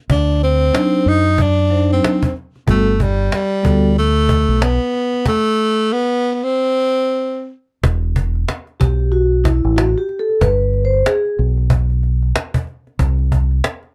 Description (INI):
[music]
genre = hip hop, jazz-hop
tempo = 93 BPM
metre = 4/4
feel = swing 60% on 16ths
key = E minor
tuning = A4 = 438 Hz
[part]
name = breathy tenor saxophone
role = melody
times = 0.1-7.5 s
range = G3 to Eb4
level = -19 LUFS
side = equal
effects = none
[part]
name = deep dub fingered electric bass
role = bass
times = 0.1-13.6 s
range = E1 to F#2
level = -18 LUFS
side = equal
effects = none
[part]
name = cajon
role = drums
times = 0.1-13.9 s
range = none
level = -21 LUFS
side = equal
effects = none
[part]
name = vibraphone with soft mallets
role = accompaniment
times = 0.7-3.9, 8.8-11.4 s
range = F#3 to C5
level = -20 LUFS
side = equal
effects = none
[sound]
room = light reverb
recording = dry, close 1970s-style studio recording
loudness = -16 LUFS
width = mono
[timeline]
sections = 0.0-7.8 A section; 7.8-13.9 B section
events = stop 5.3-7.8; vibraphone solo 7.8-13.9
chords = 0.1 D7b9; 2.7 Gmaj9; 5.3 N.C.; 7.8 E5; 10.4 G; 13.0 C5